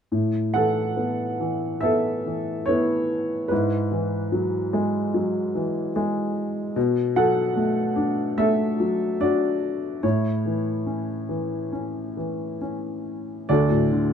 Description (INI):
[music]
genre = classical, lyrical solo piano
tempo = 66-76 BPM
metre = 4/4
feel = rubato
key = A major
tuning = A4 = 438 Hz
[part]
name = dark upright piano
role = solo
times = 0.1-14.1 s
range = D2 to F#5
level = -22 LUFS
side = equal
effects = none
[sound]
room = moderate studio reverb, RT60 0.7 s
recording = dark, warm production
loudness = -22 LUFS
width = side -8 dB against mid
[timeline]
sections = 0.1-13.5 A section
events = none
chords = 0.1 Asus2; 3.5 Eadd9/G#; 6.8 Bm7; 10.0 A; 13.5 D